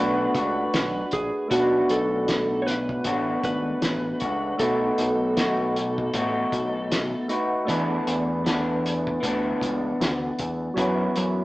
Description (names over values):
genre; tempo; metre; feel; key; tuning
indie pop, bedroom pop; 78 BPM; 4/4; swing 60% on 16ths; B minor; A4 = 441 Hz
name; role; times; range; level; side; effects
electric slide guitar; melody; 0.0-7.3 s; F#4 to C#5; -27 LUFS; right 1 dB; none
electric guitar through a small old amp; accompaniment; 0.0-11.4 s; F#2 to A4; -26 LUFS; left 1 dB; vibrato effect
soft electric-piano-like synth keys; accompaniment; 0.0-11.4 s; F#3 to B4; -30 LUFS; right 1 dB; chorus
fat analog bass; bass; 0.0-11.4 s; G#1 to F#2; -30 LUFS; equal; none
cloth-damped thuddy drum kit; drums; 0.3-11.4 s; hi-hat, kick drum, snare drum; -28 LUFS; equal; none
room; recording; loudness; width
moderate stone room reverb, RT60 1.0 s; band playing live in one room, small speaker sound; -22 LUFS; side -18 dB against mid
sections
0.0-1.5 A section; 1.5-11.4 B section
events
none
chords
0.0 Bm7; 4.6 B7; 7.7 E7sus4; 10.8 F#7sus4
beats
0.73 | 1.51 2.28 3.05 3.82 | 4.60 5.37 6.14 6.91 | 7.68 8.46 9.23 10.00 | 10.77